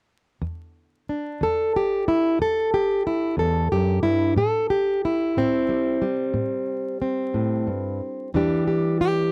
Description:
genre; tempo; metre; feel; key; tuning
acoustic country blues, solo or duo; 61 BPM (dotted quarters); 12/8; straight; E minor; A4 = 440 Hz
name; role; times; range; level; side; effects
fingerpicked plugged-in steel-string acoustic guitar; solo; 0.4-9.3 s; E2 to A4; -23 LUFS; equal; none
room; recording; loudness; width
light reverb; dry, close 1970s-style studio recording, vinyl crackle; -23 LUFS; mono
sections
0.4-8.3 A section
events
none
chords
0.4 Em7; 4.4 Am7; 8.3 Em7

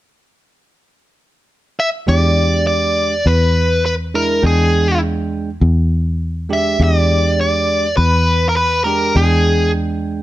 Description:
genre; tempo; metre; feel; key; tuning
straight-eighth soul blues; 102 BPM; 4/4; straight; E mixolydian; A4 = 440 Hz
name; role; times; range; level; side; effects
biting overdriven guitar; melody; 1.8-9.7 s; G#4 to E5; -16 LUFS; equal; none
bell-like tine electric piano; accompaniment; 2.1-10.2 s; G#3 to G5; -21 LUFS; right 5 dB; none
fingered electric bass; bass; 2.1-10.2 s; E2; -16 LUFS; equal; none
room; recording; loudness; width
digital ambience; none; -13 LUFS; side -15 dB against mid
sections
0.0-2.1 A section; 2.1-10.2 B section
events
none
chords
0.0 N.C.; 2.1 E7#9

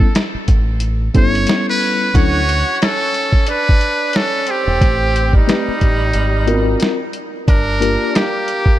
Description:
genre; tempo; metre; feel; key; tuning
hip hop, jazz-hop; 90 BPM; 4/4; swing 59% on 16ths; unclear; A4 = 440 Hz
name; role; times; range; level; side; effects
trumpet with metal mute; melody; 0.0-8.8 s; Eb4 to C#5; -19 LUFS; equal; ping-pong delay
mellow tine electric piano; accompaniment; 0.0-8.2 s; F#3 to B4; -21 LUFS; left 2 dB; medium stereo tremolo
lo-fi sampler-style drum kit; drums; 0.0-8.8 s; hi-hat, kick drum, snare drum; -15 LUFS; equal; none
deep dub fingered electric bass; bass; 0.3-8.0 s; E1 to D2; -18 LUFS; equal; none
bright tenor saxophone; second line; 2.1-8.8 s; G3 to F#4; -23 LUFS; right 4 dB; none
room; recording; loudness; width
light reverb, digital ambience; none; -13 LUFS; side -14 dB against mid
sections
0.0-2.1 A section; 2.1-8.8 B section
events
muted trumpet solo 0.0-2.1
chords
0.0 A7; 2.1 Dmaj7; 4.8 Am7b5; 6.1 G#13; 7.5 Gm7

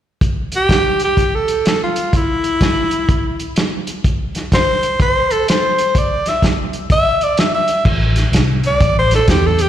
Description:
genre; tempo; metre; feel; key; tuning
electric blues shuffle; 126 BPM; 4/4; swing 64% on 8ths; unclear; A4 = 440 Hz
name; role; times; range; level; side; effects
vintage drum kit; drums; 0.2-9.7 s; crash cymbal, hi-hat, kick drum, snare drum; -17 LUFS; equal; slapback echo
growling tenor saxophone; melody; 0.6-9.7 s; E4 to E5; -16 LUFS; equal; slapback echo, digital delay
vintage muted fingered electric bass; bass; 7.9-9.7 s; A1 to E2; -15 LUFS; equal; none
room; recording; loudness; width
light reverb; live gig heard through the venue's PA, recital hall reverb; -13 LUFS; side -11 dB against mid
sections
0.2-7.8 A section; 7.8-9.7 B section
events
none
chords
0.2 N.C.; 7.8 Am

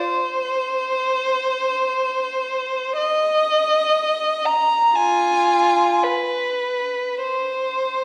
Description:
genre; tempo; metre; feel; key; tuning
classical, free, expressive piece for unaccompanied violin; 50-64 BPM; 4/4; rubato; C minor; A4 = 439 Hz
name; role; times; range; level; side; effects
rich violin; solo; 0.0-8.0 s; F4 to Bb5; -20 LUFS; equal; none
room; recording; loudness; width
wet recital hall reverb, RT60 1.3 s; heard from further back in the room; -20 LUFS; mono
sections
0.0-8.0 A section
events
none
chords
none

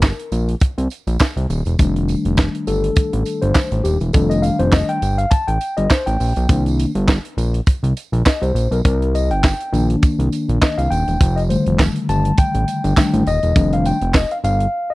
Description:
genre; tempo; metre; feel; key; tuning
early-eighties boogie funk; 102 BPM; 4/4; swing 56% on 16ths; unclear; A4 = 440 Hz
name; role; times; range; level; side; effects
mellow tine electric piano; accompaniment; 0.0-14.9 s; D3 to A5; -20 LUFS; left 2 dB; none
fat analog bass; bass; 0.0-14.7 s; Eb1 to C2; -18 LUFS; equal; none
tight funk drum kit; drums; 0.0-14.7 s; handclaps, hi-hat, kick drum, snare drum; -16 LUFS; equal; none
tambourine; percussion; 0.0-14.6 s; none; -37 LUFS; right 15 dB; none
room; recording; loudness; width
studio reverb; dry, close 1970s-style studio recording; -15 LUFS; side -20 dB against mid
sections
0.0-14.9 A section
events
tine electric piano solo 0.0-14.9; band accent 14.7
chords
0.0 Cm7; 1.8 F13; 6.5 Cm9; 11.2 F13

